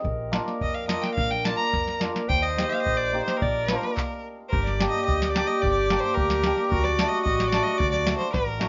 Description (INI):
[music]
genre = klezmer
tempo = 108 BPM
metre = 2/4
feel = straight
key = Bb major, G harmonic minor from 4.5 s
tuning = A4 = 440 Hz
[part]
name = breathy clarinet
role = second line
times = 0.0-8.6 s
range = F#4 to D5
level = -30 LUFS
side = equal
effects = none
[part]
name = upright bass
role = bass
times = 0.0-8.7 s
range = G1 to F2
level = -33 LUFS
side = equal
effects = none
[part]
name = soft vintage rhythm box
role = drums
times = 0.0-8.7 s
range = handclaps, kick drum, snare drum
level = -31 LUFS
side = equal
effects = none
[part]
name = cimbalom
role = accompaniment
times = 0.3-8.7 s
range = A3 to G4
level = -32 LUFS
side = equal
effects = none
[part]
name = clear violin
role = melody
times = 0.6-8.7 s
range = Bb4 to Bb5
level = -30 LUFS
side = equal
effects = none
[sound]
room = light reverb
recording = nothing above 7.5 kHz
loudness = -24 LUFS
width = mono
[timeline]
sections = 0.0-4.5 A section; 4.5-8.7 B section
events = speeding up 0.0-8.7; stop 4.0-4.5; drum fill 8.3-8.7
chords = 0.0 Bb; 2.3 Eb; 3.4 Bb; 4.0 N.C.; 4.5 Gm; 6.7 D